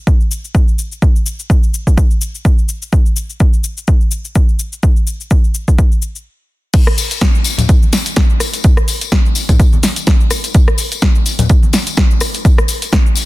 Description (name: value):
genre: house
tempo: 126 BPM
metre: 4/4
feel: swing 56% on 16ths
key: none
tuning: none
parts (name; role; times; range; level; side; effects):
- electronic kick drum; drums; 0.1-13.0 s; none; -11 LUFS; equal; overdrive, small room ambience
- punchy analog drum machine; drums; 0.1-13.3 s; crash cymbal, hi-hat, rim click, shaker, snare drum; -18 LUFS; left 1 dB; overdrive, sidechain pumping on perc, small room ambience, sidechain pumping on hats, sidechain pumping on cymbals
- tambourine and congas; percussion; 6.7-13.3 s; none; -20 LUFS; left 4 dB; sidechain pumping on perc, low-pass filter on perc
room: little or no reverb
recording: dense, heavily limited modern master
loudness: -11 LUFS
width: side -19 dB against mid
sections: 0.0-6.7 A section; 6.7-13.3 B section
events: stop 6.3-6.7; drop 6.7-13.3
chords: none